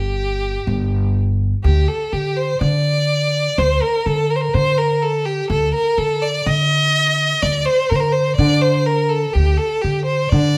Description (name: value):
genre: Arabic maqam ensemble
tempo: 124 BPM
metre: 4/4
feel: straight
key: D maqam bayati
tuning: A4 = 440 Hz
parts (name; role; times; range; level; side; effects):
- rich violin; melody; 0.0-10.6 s; G4 to Eb5+44c; -20 LUFS; equal; none
- upright bass; bass; 0.0-10.6 s; G1 to D3; -21 LUFS; equal; none
room: moderate stone room reverb, RT60 1.2 s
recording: band playing live in one room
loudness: -18 LUFS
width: mono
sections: 0.0-1.6 A section; 1.6-10.6 B section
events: none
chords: none